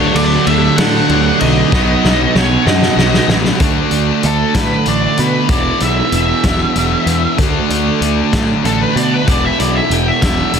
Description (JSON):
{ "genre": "quiet-loud alternative rock", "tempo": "64 BPM (dotted quarters)", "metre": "6/8", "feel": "straight", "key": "unclear", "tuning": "A4 = 443 Hz", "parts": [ { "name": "octave-fuzz lead guitar", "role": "melody", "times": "0.0-10.6 s", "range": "A4 to G5", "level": "-18 LUFS", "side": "right 1 dB", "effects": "distortion" }, { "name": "distorted electric guitar", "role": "riff", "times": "0.0-10.6 s", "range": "E2 to D4", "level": "-19 LUFS", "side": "left 14 dB", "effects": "overdrive" }, { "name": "distorted electric guitar", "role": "riff", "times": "0.0-3.6 s", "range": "B2 to D#4", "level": "-19 LUFS", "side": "equal", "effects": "distortion" }, { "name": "raw garage guitar", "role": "riff", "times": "0.0-10.6 s", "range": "B2 to F#4", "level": "-18 LUFS", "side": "right 13 dB", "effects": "overdrive" }, { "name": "fuzz picked electric bass", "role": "bass", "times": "0.0-10.6 s", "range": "E1 to B2", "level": "-18 LUFS", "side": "left 1 dB", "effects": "overdrive" }, { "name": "loose indie drum kit", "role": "drums", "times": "0.2-10.6 s", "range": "hi-hat, kick drum, ride cymbal, snare drum", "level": "-17 LUFS", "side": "left 1 dB", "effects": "none" } ], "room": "studio ambience", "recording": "dense, heavily limited modern master", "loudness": "-11 LUFS", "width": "side -7 dB against mid", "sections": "0.0-3.6 A section; 3.6-10.6 B section", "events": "drum fill 1.7-3.6; lead electric guitar solo 3.6-10.6", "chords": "0.0 D; 1.7 B; 3.6 D; 5.5 E; 7.4 D; 9.3 E" }